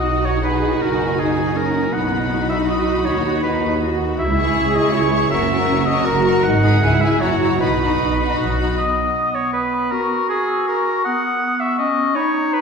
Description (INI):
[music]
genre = classical, dramatic, fast romantic movement for symphony orchestra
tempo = 160 BPM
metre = 3/4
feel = straight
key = B major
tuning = A4 = 440 Hz
[part]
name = clear symphonic violin section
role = melody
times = 0.0-8.8 s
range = F#5 to C#6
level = -29 LUFS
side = left 4 dB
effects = none
[part]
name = clear oboe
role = second line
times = 0.0-12.6 s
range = F#4 to F#5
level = -21 LUFS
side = equal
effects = none
[part]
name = clear studio violin section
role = second line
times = 0.0-8.8 s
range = F#4 to A#4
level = -27 LUFS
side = left 4 dB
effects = none
[part]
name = clear symphonic viola section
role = accompaniment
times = 0.0-8.8 s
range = D#4 to F#4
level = -23 LUFS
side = left 1 dB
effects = none
[part]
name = clear symphonic double bass section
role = bass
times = 0.0-8.7 s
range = F#1 to D#2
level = -21 LUFS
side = right 2 dB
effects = none
[part]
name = dark symphonic cello section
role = bass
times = 0.0-8.6 s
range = B3 to G#4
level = -23 LUFS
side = right 3 dB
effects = none
[part]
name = bright clarinet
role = second line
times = 8.8-12.6 s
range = B3 to F#4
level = -23 LUFS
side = right 1 dB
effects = none
[part]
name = concert flute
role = second line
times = 8.8-12.6 s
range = A#5 to E6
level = -24 LUFS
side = left 5 dB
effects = none
[sound]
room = wet concert hall reverb, RT60 1.9 s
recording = heard from further back in the room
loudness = -16 LUFS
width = side -5 dB against mid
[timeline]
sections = 0.0-8.8 A section; 8.8-12.6 A section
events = none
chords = 0.0 B; 0.8 F#69; 1.9 B; 3.1 B/D#; 4.2 C#m; 5.3 F#7; 6.4 G#m; 6.8 C#m; 7.2 F#7; 7.6 B; 9.9 F#add9; 11.1 B